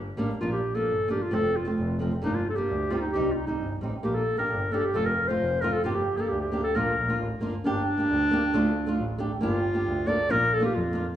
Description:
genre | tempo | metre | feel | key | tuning
klezmer | 133 BPM | 2/4 | straight | Bb major, G minor from 7.6 s | A4 = 440 Hz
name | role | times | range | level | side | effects
rich double bass | bass | 0.0-11.0 s | F1 to F2 | -32 LUFS | equal | none
flamenco guitar | accompaniment | 0.2-11.1 s | F3 to A4 | -29 LUFS | right 1 dB | none
mellow clarinet | melody | 0.4-11.1 s | D4 to D5 | -26 LUFS | equal | none
room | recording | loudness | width
moderate recital hall reverb, RT60 1.4 s | small room ambience | -24 LUFS | side -11 dB against mid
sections
0.4-7.6 A section; 7.6-11.2 B section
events
speeding up 0.0-11.2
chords
0.4 Bb; 1.3 F; 2.2 Gm; 3.1 Cm; 4.0 Bb; 4.9 F; 5.8 Gm; 6.7 Bb; 7.6 Gm; 8.5 Dm; 9.4 Gm; 10.3 Bb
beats
| 0.40 0.86 | 1.32 1.77 | 2.23 2.68 | 3.14 3.59 | 4.04 4.50 | 4.95 5.40 | 5.85 6.30 | 6.75 7.19 | 7.64 8.08 | 8.53 8.97 | 9.41 9.85 | 10.29 10.73

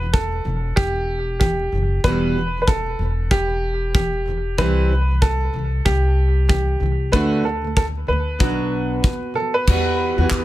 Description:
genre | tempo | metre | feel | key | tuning
acoustic pop | 94 BPM | 4/4 | swing 60% on 16ths | E minor | A4 = 441 Hz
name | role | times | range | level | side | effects
clear upright piano | melody | 0.0-10.4 s | G4 to B4 | -24 LUFS | right 1 dB | tape echo
fingerpicked plugged-in steel-string acoustic guitar | accompaniment | 0.0-10.4 s | E2 to F#4 | -23 LUFS | right 1 dB | double-tracked left and right
upright bass | bass | 0.0-10.4 s | E1 to E2 | -21 LUFS | equal | none
modern studio drum kit | drums | 0.1-10.4 s | crash cymbal, handclaps, kick drum | -20 LUFS | equal | none
room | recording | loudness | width
light reverb | none | -17 LUFS | side -15 dB against mid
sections
0.0-9.7 A section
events
none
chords
0.0 Emadd9; 4.6 C; 7.1 D; 8.4 Bm; 9.7 Emadd9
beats
0.14 0.77 1.41 | 2.04 2.68 3.31 3.95 | 4.59 5.22 5.86 6.50 | 7.13 7.77 8.40 9.04 | 9.68 10.31

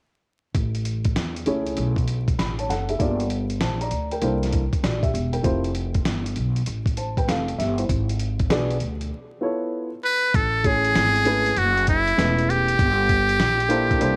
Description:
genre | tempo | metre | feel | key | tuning
hip hop, jazz-hop | 98 BPM | 4/4 | swing 66% on 16ths | unclear | A4 = 440 Hz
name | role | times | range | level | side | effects
upright bass | bass | 0.5-14.2 s | E1 to E2 | -28 LUFS | equal | none
dusty soul sampler-style drum kit | drums | 0.5-14.2 s | hi-hat, kick drum, snare drum | -28 LUFS | equal | none
dark baby grand piano | accompaniment | 1.5-14.2 s | G#3 to B5 | -28 LUFS | equal | none
trumpet with metal mute | melody | 10.0-14.2 s | E4 to B4 | -22 LUFS | equal | none
room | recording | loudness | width
light reverb | vinyl crackle | -22 LUFS | mono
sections
0.5-10.3 A section; 10.3-14.2 B section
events
silent gap 9.1-10.3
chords
0.5 Amaj7; 3.0 Gm7; 4.2 C13; 5.4 Fmaj9; 7.9 G#m7b5; 9.1 C#7alt; 10.3 Amaj7; 12.8 Gm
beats
| 0.55 1.16 1.77 2.38 | 3.00 3.61 4.22 4.83 | 5.44 6.06 6.67 7.28 | 7.89 8.51 9.12 9.73 | 10.34 10.95 11.57 12.18 | 12.79 13.40 14.02

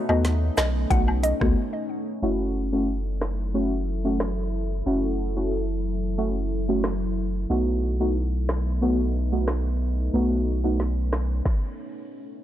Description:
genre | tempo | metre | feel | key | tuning
dancehall | 91 BPM | 4/4 | straight | F# dorian | A4 = 440 Hz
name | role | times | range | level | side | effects
deep mellow chord stab | accompaniment | 0.0-10.8 s | A3 to F#4 | -25 LUFS | equal | chorus
deep dark ambient pad | sustained chords | 0.0-11.4 s | F#3 to A4 | -32 LUFS | left 1 dB | chorus, built-in reverb, sidechain pumping
mallet-like synth pluck | melody | 0.1-1.3 s | D#5 to F#5 | -29 LUFS | left 1 dB | chorus, phaser, analog delay
punchy sub bass | bass | 0.1-11.4 s | F#1 to D#2 | -26 LUFS | equal | none
woodblock and cabasa | percussion | 0.1-1.4 s | none | -33 LUFS | left 2 dB | none
afro-pop drum kit | drums | 0.2-11.6 s | hi-hat, kick drum, rim click, snare drum | -27 LUFS | equal | overdrive
room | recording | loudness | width
little or no reverb | dry, gritty hardware recording, transformer saturation, low-pass filter | -22 LUFS | side -12 dB against mid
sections
0.0-2.2 A section; 2.2-12.4 B section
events
break 1.6-2.2; filter sweep 2.2-12.4; stop 11.5-12.4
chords
0.0 B7; 2.2 F#m7; 7.5 B7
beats
0.25 0.91 1.56 | 2.22 2.88 3.54 4.20 | 4.86 5.52 6.18 6.84 | 7.50 8.16 8.82 9.48 | 10.14 10.80 11.46

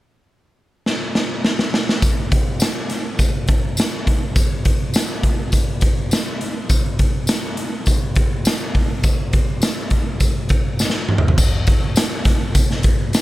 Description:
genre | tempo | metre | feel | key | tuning
soul | 103 BPM | 4/4 | straight | none | none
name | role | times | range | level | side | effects
raw garage drum kit | drums | 0.9-13.2 s | crash cymbal, hi-hat, kick drum, snare drum, toms | -16 LUFS | equal | none
tambourine | percussion | 2.0-13.2 s | none | -27 LUFS | left 2 dB | none
room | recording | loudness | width
light reverb | none | -16 LUFS | side -17 dB against mid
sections
0.0-2.0 A section; 2.0-11.4 B section; 11.4-13.2 C section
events
drum fill 0.8-2.0, 10.8-11.4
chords
none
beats
0.26 0.85 1.43 | 2.02 2.60 3.19 3.77 | 4.36 4.94 5.53 6.11 | 6.70 7.28 7.87 8.45 | 9.04 9.62 10.21 10.79 | 11.38 11.96 12.55 13.13

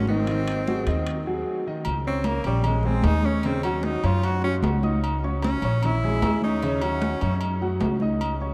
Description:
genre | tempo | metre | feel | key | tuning
Afro-Cuban jazz | 151 BPM | 4/4 | straight | unclear | A4 = 440 Hz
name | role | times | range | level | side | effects
clear tenor saxophone | melody | 0.0-7.4 s | G3 to Gb4 | -32 LUFS | equal | none
upright bass | bass | 0.0-8.5 s | Ab1 to Gb2 | -28 LUFS | equal | none
warm concert grand piano | accompaniment | 0.1-8.5 s | Db3 to Eb6 | -31 LUFS | equal | none
congas | percussion | 0.1-8.5 s | none | -32 LUFS | equal | none
timbales and agogo bells | percussion | 0.3-8.4 s | none | -35 LUFS | equal | none
room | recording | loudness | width
moderate huge ambient reverb, RT60 7.8 s | in a vast, echoing space | -24 LUFS | mono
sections
0.0-1.9 A section; 1.9-8.5 B section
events
tenor saxophone solo 1.9-8.5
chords
0.3 Ab7; 1.9 Bbm69; 2.6 Bbm7; 3.4 Ebm7; 4.2 Gb5; 5.0 Dbsus2; 5.8 Bbm7; 6.6 Ebm7; 7.4 Gb5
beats
| 0.27 0.67 1.06 1.46 | 1.86 2.25 2.65 3.05 | 3.44 3.84 4.24 4.63 | 5.03 5.43 5.82 6.22 | 6.62 7.01 7.41 7.81 | 8.21

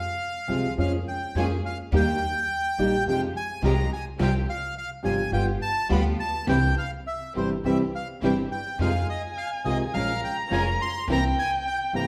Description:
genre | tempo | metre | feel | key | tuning
tango | 105 BPM | 4/4 | rubato | F minor | A4 = 440 Hz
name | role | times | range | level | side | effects
bandoneon | melody | 0.0-12.1 s | C5 to C6 | -32 LUFS | equal | none
nylon-string guitar | accompaniment | 0.5-12.1 s | C3 to G4 | -30 LUFS | equal | none
bright studio string section | stabs | 0.5-12.1 s | Ab3 to Bb4 | -38 LUFS | equal | none
upright bass | bass | 0.5-12.1 s | F1 to F2 | -30 LUFS | equal | none
dark violin | second line | 8.8-12.1 s | G5 to Bb5 | -32 LUFS | equal | none
room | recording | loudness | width
wet large studio reverb, RT60 1.4 s | band playing live in one room | -26 LUFS | mono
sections
0.0-12.1 A section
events
none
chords
0.0 Fm; 0.8 Bbm7/F; 1.9 Eb; 3.1 Fmadd9; 4.2 Csus4; 5.3 G7; 6.5 C; 8.8 Fm7; 9.9 Bbm7; 11.1 C7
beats
0.20 0.78 1.35 | 1.92 2.49 3.06 3.63 | 4.19 4.76 5.32 5.90 | 6.47 7.06 7.64 8.22 | 8.80 9.37 9.94 10.52 | 11.08 11.65

